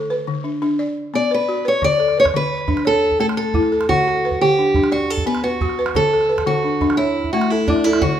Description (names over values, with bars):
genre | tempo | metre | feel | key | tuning
west african traditional, West African string and xylophone music | 116 BPM (dotted quarters) | 12/8 | straight | D major | A4 = 439 Hz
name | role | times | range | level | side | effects
balafon | arpeggios | 0.0-8.2 s | D3 to D5 | -20 LUFS | left 2 dB | none
picked steel-string acoustic guitar | melody | 1.2-8.2 s | D4 to D5 | -17 LUFS | right 1 dB | none
calabash | percussion | 1.8-8.2 s | none | -26 LUFS | right 3 dB | none
room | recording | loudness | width
moderate recital hall reverb, RT60 1.7 s | minimal, uncompressed stereo recording | -16 LUFS | side -10 dB against mid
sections
0.0-8.2 A section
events
none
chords
0.0 D5; 0.8 Bm; 1.8 D5; 2.9 A; 3.9 D; 4.9 Bm; 6.0 D; 7.0 A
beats
0.28 0.80 1.31 | 1.83 2.34 2.86 3.38 | 3.89 4.41 4.92 5.44 | 5.96 6.47 6.99 7.50 | 8.02